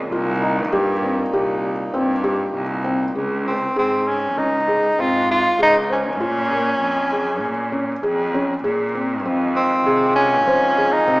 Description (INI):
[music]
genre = contemporary instrumental, chamber music in an uneven meter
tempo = 98 BPM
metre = 5/4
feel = straight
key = unclear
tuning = A4 = 440 Hz
[part]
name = pedal harmonium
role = sustained chords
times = 0.0-3.1, 9.3-11.2 s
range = Bb2 to F4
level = -26 LUFS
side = right 1 dB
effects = none
[part]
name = bright cello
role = bass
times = 0.0-11.2 s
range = C2 to C3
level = -25 LUFS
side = right 1 dB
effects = none
[part]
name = felt-muted upright piano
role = arpeggios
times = 0.1-11.2 s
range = Db3 to C5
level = -22 LUFS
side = left 1 dB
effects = none
[part]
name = warm soprano saxophone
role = melody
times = 3.5-11.2 s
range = C4 to F4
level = -18 LUFS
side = equal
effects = none
[sound]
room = wet scoring stage reverb, RT60 1.7 s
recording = recorded in a church or concert hall, small speaker sound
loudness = -17 LUFS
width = side -24 dB against mid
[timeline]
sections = 0.0-3.2 A section; 3.2-11.2 B section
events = none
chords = 0.1 Cm7; 3.2 Db5; 6.2 Bbm7; 9.3 Fm7